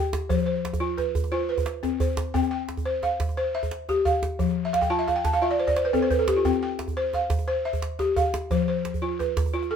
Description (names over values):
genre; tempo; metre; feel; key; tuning
west african traditional, West African string and xylophone music; 117 BPM (dotted quarters); 12/8; straight; C major; A4 = 438 Hz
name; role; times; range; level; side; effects
balafon; arpeggios; 0.0-9.8 s; F3 to A5; -24 LUFS; left 1 dB; none
djembe; percussion; 0.1-9.7 s; none; -28 LUFS; right 2 dB; none
room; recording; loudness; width
light reverb; minimal, uncompressed stereo recording; -23 LUFS; side -7 dB against mid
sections
0.0-2.3 A section; 2.3-9.8 B section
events
balafon fill 4.7-6.4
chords
0.3 F5; 2.3 C; 4.4 F5; 6.4 C; 8.5 F5